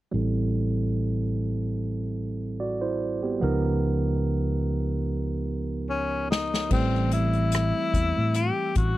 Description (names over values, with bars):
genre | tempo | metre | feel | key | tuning
R&B, neo-soul | 73 BPM | 4/4 | swing 54% on 16ths | unclear | A4 = 439 Hz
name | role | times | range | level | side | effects
barky tine electric piano | accompaniment | 0.1-9.0 s | E3 to D5 | -28 LUFS | right 4 dB | overdrive, low-pass filter
fretless electric bass | bass | 0.1-8.9 s | A1 to A2 | -27 LUFS | left 1 dB | none
breathy tenor saxophone | melody | 5.9-9.0 s | C4 to G4 | -27 LUFS | left 4 dB | none
unplugged drum kit | drums | 6.3-9.0 s | crash cymbal, hi-hat, kick drum, rim click, snare drum | -28 LUFS | left 1 dB | none
room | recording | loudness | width
little or no reverb | dry, close 1970s-style studio recording | -24 LUFS | side -16 dB against mid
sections
0.1-6.7 A section; 6.7-9.0 B section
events
drum fill 5.1-6.7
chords
0.1 Am7; 3.4 C#13; 6.7 Am7